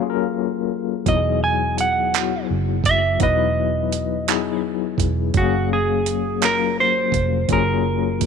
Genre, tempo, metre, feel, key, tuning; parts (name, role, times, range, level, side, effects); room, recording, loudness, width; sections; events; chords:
slow six-eight R&B; 56 BPM (dotted quarters); 6/8; straight; E major; A4 = 440 Hz
clean electric guitar; melody; 0.0-8.3 s; F#4 to G#5; -21 LUFS; right 3 dB; slapback echo
mellow tine electric piano; accompaniment; 0.0-8.3 s; F#3 to E#5; -22 LUFS; left 14 dB; medium tremolo
vintage muted fingered electric bass; bass; 1.1-8.3 s; E1 to G#1; -24 LUFS; right 2 dB
dusty soul sampler-style drum kit; drums; 1.1-8.3 s; handclaps, hi-hat, kick drum; -23 LUFS; right 7 dB
light reverb, digital ambience; 1960s-style stereo with parts hard left and right; -18 LUFS; side -6 dB against mid
0.0-8.3 A section
0.0 F#maj9; 1.1 Emaj9; 5.4 F#maj9